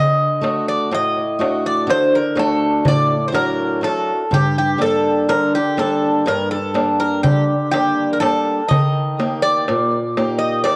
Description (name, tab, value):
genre	greek folk, Greek bouzouki band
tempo	123 BPM (eighths)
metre	9/8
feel	straight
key	unclear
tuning	A4 = 441 Hz
part	Greek bouzouki	melody	0.0-10.8 s	G4 to Eb5	-21 LUFS	equal	tape echo
part	picked swing-style acoustic guitar	accompaniment	0.0-10.8 s	G2 to G4	-23 LUFS	equal	none
part	darbuka	percussion	0.4-10.8 s	none	-23 LUFS	equal	none
room	moderate spring reverb, RT60 2.3 s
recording	worn, warbling old tape, cassette tape, warbly pitch drift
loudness	-18 LUFS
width	mono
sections	0.0-10.8 A section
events	none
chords	0.0 D; 4.3 Gm; 8.7 Eb